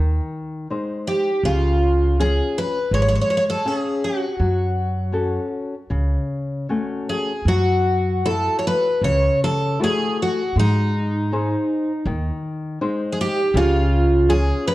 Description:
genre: fado-style ballad.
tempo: 80 BPM.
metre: 4/4.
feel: rubato.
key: unclear.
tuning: A4 = 440 Hz.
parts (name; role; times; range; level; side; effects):
nylon-string guitar; accompaniment; 0.0-14.7 s; C#3 to E#5; -24 LUFS; left 2 dB; none.
upright bass; bass; 0.0-14.5 s; G#1 to G#2; -20 LUFS; equal; none.
picked twelve-string acoustic guitar; melody; 1.1-14.7 s; D#4 to C#5; -20 LUFS; equal; none.
room: moderate recital hall reverb, RT60 1.4 s.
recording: worn, warbling old tape, cassette tape, warbly pitch drift.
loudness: -18 LUFS.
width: side -16 dB against mid.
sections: 0.0-7.5 A section; 7.5-14.7 A section.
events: none.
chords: 0.0 G#; 1.4 C#; 4.4 F#m; 7.5 F#m7; 10.6 G#; 13.5 C#.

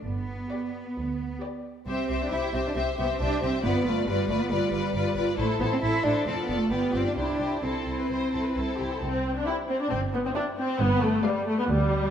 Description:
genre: quick classical-period movement for string orchestra.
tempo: 135 BPM.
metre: 4/4.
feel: rubato.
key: C major.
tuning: A4 = 440 Hz.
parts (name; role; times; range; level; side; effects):
rich studio cello section; bass; 0.0-12.0 s; C2 to E4; -29 LUFS; right 2 dB; none.
rich studio double bass section; bass; 0.0-12.0 s; F1 to D2; -31 LUFS; right 2 dB; none.
rich studio violin section; melody; 0.5-11.6 s; C5 to F5; -34 LUFS; left 6 dB; none.
rich studio violin section; second line; 0.5-11.6 s; G4 to D5; -34 LUFS; left 5 dB; none.
warm studio viola section; accompaniment; 0.5-12.1 s; G3 to G4; -29 LUFS; left 1 dB; none.
room: wet scoring stage reverb, RT60 1.5 s.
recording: none.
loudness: -24 LUFS.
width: side -8 dB against mid.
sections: 0.0-9.0 A section; 9.0-12.1 B section.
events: none.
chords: 0.0 G; 1.9 C; 3.6 G7; 5.4 Am; 6.3 Dm/F; 6.7 G7; 7.2 C; 10.8 G7.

